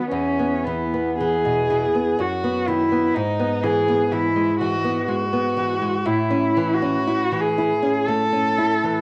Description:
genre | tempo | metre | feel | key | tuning
romantic duo for cello and classical guitar | 54-63 BPM | 3/4 | rubato | E major | A4 = 441 Hz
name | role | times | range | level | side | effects
warm cello | melody | 0.0-9.0 s | B3 to A4 | -23 LUFS | equal | cassette tape
nylon-string guitar | accompaniment | 0.0-9.0 s | E2 to E4 | -25 LUFS | equal | cassette tape
room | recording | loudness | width
light reverb, small room reverb | home recording on cassette | -21 LUFS | mono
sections
0.0-9.0 A section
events
none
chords
0.1 E; 2.2 B/F#; 3.1 E/G#; 6.1 A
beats
| 0.11 1.19 2.18 | 3.15 4.12 5.08 | 6.07 7.07 8.07

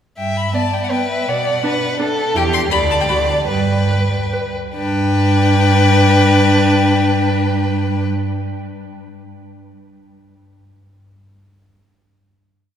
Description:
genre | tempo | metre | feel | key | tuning
quick classical-period movement for string quartet | 137-168 BPM | 3/4 | rubato | G major | A4 = 442 Hz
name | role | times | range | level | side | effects
rich violin | melody | 0.2-8.1 s | E5 to C6 | -21 LUFS | left 5 dB | none
warm violin | second line | 0.2-8.1 s | G4 to E5 | -19 LUFS | left 1 dB | none
warm cello | bass | 0.2-8.1 s | D2 to B2 | -18 LUFS | right 3 dB | none
warm viola | accompaniment | 0.5-8.1 s | B3 to B4 | -20 LUFS | left 2 dB | none
room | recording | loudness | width
wet cathedral reverb, RT60 4.3 s | recorded in a church or concert hall | -13 LUFS | side -9 dB against mid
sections
0.2-4.8 A section; 4.8-7.3 final chord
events
slowing down 1.8-4.8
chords
0.2 G; 1.3 Bm; 2.4 Em; 2.7 N.C.; 3.5 G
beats
| 0.18 0.55 0.91 | 1.27 1.64 2.00 | 2.35 2.72 3.10 | 3.49 3.91 4.33 | 4.76 5.19 5.61 | 6.03 6.45 6.87

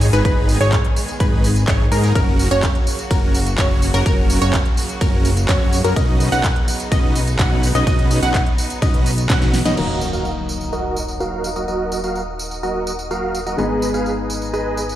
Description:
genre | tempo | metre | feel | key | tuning
EDM, festival progressive house | 126 BPM | 4/4 | straight | Eb minor | A4 = 441 Hz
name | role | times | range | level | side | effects
clear studio string section | sustained chords | 0.0-15.0 s | Db3 to Eb6 | -30 LUFS | right 1 dB | vintage 12-bit sampler grit, sidechain pumping, low-pass filter
wide unison pluck | arpeggios | 0.0-9.8 s | Bb4 to F#5 | -24 LUFS | equal | auto-pan, sidechain pumping, tape echo
dense compressed supersaw | riff | 0.0-14.8 s | Db4 to F#5 | -23 LUFS | right 1 dB | sidechain pumping, low-pass filter, tape echo
fat analog bass | bass | 0.0-15.0 s | Eb1 to Ab2 | -21 LUFS | equal | sidechain pumping
big-room dance drum kit | drums | 0.0-15.0 s | crash cymbal, handclaps, hi-hat, ride cymbal, snare drum, tambourine | -26 LUFS | right 1 dB | none
electronic kick drum | drums | 0.2-9.4 s | none | -18 LUFS | equal | none
dark grand piano | accompaniment | 9.8-15.0 s | Eb3 to Eb4 | -26 LUFS | left 3 dB | sidechain pumping, tape echo
impact | sound effects | 9.8-11.7 s | none | -29 LUFS | equal | none
room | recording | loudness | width
light reverb, digital ambience | played on a big sound system in a bare room, large studio reverb | -16 LUFS | side -13 dB against mid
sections
0.0-9.8 A section; 9.8-15.0 B section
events
drop 0.0-9.8; drum fill 9.3-9.8; band accent 9.7; impact 9.8-11.7; filter sweep on string section 9.8-15.0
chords
0.0 Abm; 2.2 Gb; 6.0 Badd9; 9.8 Ebm; 13.6 Abm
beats
| 0.25 0.73 1.20 1.68 | 2.15 2.63 3.11 3.58 | 4.06 4.54 5.01 5.49 | 5.96 6.44 6.92 7.39 | 7.87 8.35 8.82 9.30 | 9.77 10.25 10.73 11.20 | 11.68 12.15 12.63 13.11 | 13.58 14.06 14.54

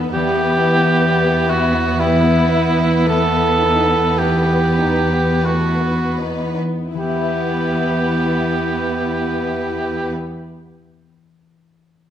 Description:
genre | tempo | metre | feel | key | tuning
classical | 38-69 BPM | 3/4 | rubato | E minor | A4 = 440 Hz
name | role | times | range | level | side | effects
rich studio violin section | melody | 0.0-10.1 s | B4 | -27 LUFS | left 4 dB | none
dark studio violin section | second line | 0.0-10.1 s | G3 to E4 | -25 LUFS | left 4 dB | none
rich studio viola section | accompaniment | 0.0-10.1 s | B3 | -23 LUFS | right 2 dB | none
concert harp | arpeggios | 0.0-10.8 s | E3 to E5 | -28 LUFS | left 7 dB | none
rich studio cello section | bass | 0.0-10.1 s | E2 | -20 LUFS | equal | none
warm oboe | second line | 0.1-10.1 s | E4 to A4 | -19 LUFS | right 2 dB | none
room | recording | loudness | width
moderate recital hall reverb, RT60 1.4 s | none | -15 LUFS | side -10 dB against mid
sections
0.0-7.0 A section; 7.0-11.3 B section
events
slowing down 0.0-7.0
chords
0.2 Em; 3.1 B7/E; 7.0 Em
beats
| 0.15 1.04 2.00 | 3.08 4.20 5.46 | 6.97 8.42 9.85

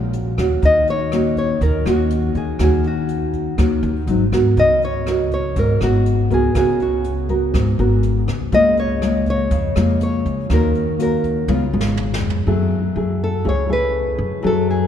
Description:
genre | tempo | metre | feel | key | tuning
bossa nova | 122 BPM | 4/4 | straight | Eb minor | A4 = 440 Hz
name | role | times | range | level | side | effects
nylon-string guitar | accompaniment | 0.0-14.9 s | Ab2 to Bb4 | -20 LUFS | left 1 dB | none
upright bass | bass | 0.0-14.9 s | Ab1 to Ab2 | -21 LUFS | equal | none
jazz brush drum kit | drums | 0.1-12.4 s | hi-hat, kick drum, rim click, snare drum, toms | -26 LUFS | equal | none
nylon-string guitar | melody | 0.7-14.9 s | F4 to Eb5 | -21 LUFS | left 1 dB | none
room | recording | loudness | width
wet cathedral reverb, RT60 4.3 s | recorded in a church or concert hall | -16 LUFS | side -9 dB against mid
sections
0.0-12.5 A section; 12.5-14.9 B section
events
drum fill 11.5-12.5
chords
0.0 Ebm7; 4.1 Ab7; 4.6 Db7sus4; 8.5 Bbm7/Db; 10.5 Ebm7; 11.5 Db7; 12.5 F#m9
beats
0.13 | 0.63 1.12 1.61 2.11 | 2.60 3.10 3.59 4.08 | 4.58 5.07 5.56 6.06 | 6.55 7.04 7.54 8.03 | 8.53 9.02 9.51 10.01 | 10.50 10.99 11.48 11.97 | 12.47 12.96 13.45 13.94 | 14.43

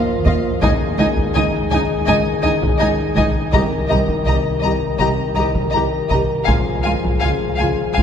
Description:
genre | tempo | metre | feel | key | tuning
cinematic, epic orchestral film score | 82 BPM | 4/4 | straight | unclear | A4 = 440 Hz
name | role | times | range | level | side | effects
mellow French horn section | sustained chords | 0.0-8.0 s | Eb3 to Bb4 | -22 LUFS | left 3 dB | none
warm symphonic violin section | melody | 0.3-8.0 s | F5 to Bb5 | -24 LUFS | left 3 dB | none
warm symphonic violin section | second line | 0.3-8.0 s | Eb5 to F5 | -24 LUFS | left 2 dB | none
warm symphonic viola section | accompaniment | 0.3-8.0 s | Eb4 to G4 | -26 LUFS | right 1 dB | none
dark chamber double bass section | bass | 0.3-8.0 s | C2 to Eb2 | -24 LUFS | right 2 dB | none
warm symphonic cello section | bass | 0.3-8.0 s | C2 to Eb2 | -24 LUFS | right 2 dB | none
taiko ensemble | drums | 0.3-8.0 s | none | -22 LUFS | equal | none
room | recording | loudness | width
wet cathedral reverb, RT60 6.6 s | recorded in a church or concert hall | -15 LUFS | side -8 dB against mid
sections
0.0-8.0 A section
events
none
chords
0.0 Ebsus2; 0.6 Dbsus2; 3.5 Cm7; 6.5 Db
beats
| 0.62 1.34 2.07 2.80 | 3.53 4.26 4.99 5.73 | 6.47 7.22 7.97

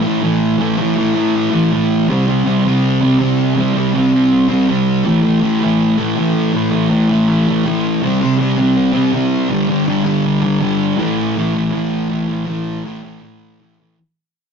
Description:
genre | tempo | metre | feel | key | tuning
rock | 162 BPM | 4/4 | straight | unclear | A4 = 440 Hz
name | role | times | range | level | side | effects
fuzz guitar | solo | 0.0-14.0 s | G2 to C4 | -13 LUFS | equal | distortion
room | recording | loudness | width
moderate studio reverb, RT60 0.6 s | rough rehearsal-room recording, tube saturation, nothing above 7.9 kHz | -13 LUFS | side -6 dB against mid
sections
0.0-11.0 A section; 11.0-14.0 B section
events
fade-out 11.0-14.0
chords
0.0 A5; 2.1 C5; 5.0 A5; 8.0 C5; 9.5 G5; 11.0 A5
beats
0.24 | 0.61 0.98 1.35 1.72 | 2.09 2.46 2.83 3.20 | 3.57 3.94 4.31 4.68 | 5.05 5.42 5.79 6.16 | 6.53 6.90 7.27 7.64 | 8.01 8.38 8.75 9.12 | 9.49 9.86 10.23 10.60 | 10.97 11.35 11.72 12.10 | 12.47 12.85 13.22 13.60

